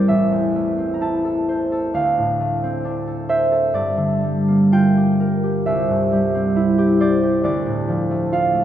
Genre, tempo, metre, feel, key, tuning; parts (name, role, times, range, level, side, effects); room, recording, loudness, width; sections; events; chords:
classical, solo harp piece; 60-68 BPM; 4/4; rubato; A4 = 441 Hz
concert harp; solo; 0.0-8.6 s; A1 to Bb5; -16 LUFS; equal
wet church reverb, RT60 3.8 s; -16 LUFS; side -10 dB against mid
0.0-8.6 A section
0.1 Am; 1.9 Dm7; 3.7 Gm7; 5.6 C; 7.4 Dm